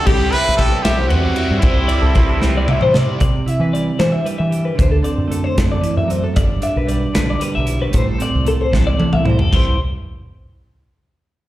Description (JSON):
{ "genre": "math rock and midwest emo", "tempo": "76 BPM (dotted quarters)", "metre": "6/8", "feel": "straight", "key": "C lydian", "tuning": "A4 = 440 Hz", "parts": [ { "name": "brilliant trumpet", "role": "melody", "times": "0.0-2.9 s", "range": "E4 to B4", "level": "-21 LUFS", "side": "right 2 dB", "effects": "slapback echo, analog delay" }, { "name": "twelve-string electric guitar", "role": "arpeggios", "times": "0.0-9.8 s", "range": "G4 to E5", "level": "-21 LUFS", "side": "left 3 dB", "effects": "phaser, slapback echo" }, { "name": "overdriven semi-hollow guitar", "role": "riff", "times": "0.0-3.2 s", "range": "C3 to E4", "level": "-22 LUFS", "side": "right 2 dB", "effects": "phaser, slapback echo" }, { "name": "growling fingered electric bass", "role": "bass", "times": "0.1-9.8 s", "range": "G1 to E3", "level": "-18 LUFS", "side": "equal", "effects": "overdrive" }, { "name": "modern studio drum kit", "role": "drums", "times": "0.1-9.6 s", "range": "crash cymbal, hi-hat, kick drum, ride cymbal, snare drum, toms", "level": "-19 LUFS", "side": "equal", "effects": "none" }, { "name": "twelve-string electric guitar", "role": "accompaniment", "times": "3.2-9.8 s", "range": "G2 to B4", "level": "-22 LUFS", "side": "right 4 dB", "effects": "none" } ], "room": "little or no reverb", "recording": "live gig heard through the venue's PA, recital hall reverb", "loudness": "-14 LUFS", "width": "side -15 dB against mid", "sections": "0.0-3.2 A section; 3.2-9.5 B section; 9.5-11.1 C section", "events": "drum fill 2.4-3.2, 8.7-9.5", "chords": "0.1 Cmaj7; 1.6 C6; 3.2 Cmaj7; 4.8 D7; 6.4 G; 7.9 Am7; 9.5 Cmaj7" }